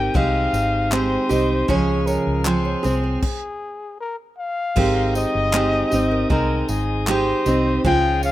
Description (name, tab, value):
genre	acoustic pop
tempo	78 BPM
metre	4/4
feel	straight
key	Ab major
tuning	A4 = 438 Hz
part	breathy trumpet	melody	0.0-8.3 s	Ab4 to G5	-24 LUFS	left 3 dB	none
part	picked steel-string acoustic guitar	accompaniment	0.0-8.3 s	Db3 to Ab4	-21 LUFS	right 2 dB	none
part	tonewheel organ	sustained chords	0.0-8.3 s	Eb3 to G5	-34 LUFS	equal	slow rotary speaker
part	nylon-string guitar	arpeggios	0.0-8.3 s	Bb4 to F5	-31 LUFS	right 2 dB	ping-pong delay
part	vintage muted fingered electric bass	bass	0.0-8.3 s	G1 to Db2	-24 LUFS	equal	none
part	natural country drum kit	drums	0.1-8.3 s	crash cymbal, handclaps, kick drum, tambourine	-25 LUFS	equal	none
room	studio ambience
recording	rough home demo mix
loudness	-17 LUFS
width	side -14 dB against mid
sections	0.0-4.8 A section; 4.8-8.3 A section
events	stop 3.2-4.8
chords	0.0 Abmaj7; 1.7 Dbmaj7; 4.8 Abmaj7